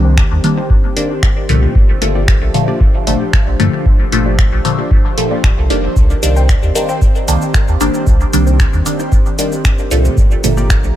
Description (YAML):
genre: dub techno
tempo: 114 BPM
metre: 4/4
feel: straight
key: C minor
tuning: A4 = 440 Hz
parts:
  - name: airy breathy pad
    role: sustained chords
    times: 0.0-11.0 s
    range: Eb3 to Bb5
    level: -22 LUFS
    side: right 1 dB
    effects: chorus, sidechain pumping
  - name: filtered dub chord stab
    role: riff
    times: 0.0-10.7 s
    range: Bb3 to G5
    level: -26 LUFS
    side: left 3 dB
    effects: phaser, sidechain pumping, dub echo
  - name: filtered dub chord stab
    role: stabs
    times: 0.0-10.9 s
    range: Bb2 to D4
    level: -17 LUFS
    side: left 1 dB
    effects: phaser, dub echo
  - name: soft dub sub bass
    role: bass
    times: 0.0-10.9 s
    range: D1 to G2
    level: -14 LUFS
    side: equal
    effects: sidechain pumping
  - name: deep house drum kit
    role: drums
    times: 0.2-10.9 s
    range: cabasa, finger snaps, hi-hat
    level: -21 LUFS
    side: equal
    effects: none
  - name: electronic kick drum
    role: drums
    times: 0.2-10.8 s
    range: none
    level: -13 LUFS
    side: equal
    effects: none
room: little or no reverb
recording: none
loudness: -10 LUFS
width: side -12 dB against mid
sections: 0.0-11.0 A section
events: none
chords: 0.0 Cm7; 1.8 Gm7; 6.0 Cm7; 10.2 Gm7